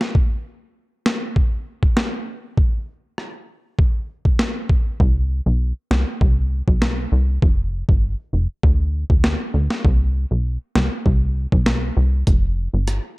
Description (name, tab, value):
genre	dancehall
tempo	99 BPM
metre	4/4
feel	straight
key	unclear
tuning	A4 = 440 Hz
part	boom bap sampler-style drum kit	drums	0.0-13.0 s	hi-hat, kick drum, rim click, snare drum	-18 LUFS	equal	none
part	plucky analog bass	bass	5.0-13.0 s	F1 to D2	-18 LUFS	equal	none
room	little or no reverb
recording	dark, warm production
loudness	-17 LUFS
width	side -22 dB against mid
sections	0.0-13.2 A section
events	none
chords	none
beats	| 0.15 0.76 1.36 1.97 | 2.58 3.18 3.79 4.39 | 5.00 5.61 6.21 6.82 | 7.42 8.03 8.63 9.24 | 9.85 10.45 11.06 11.67 | 12.27 12.88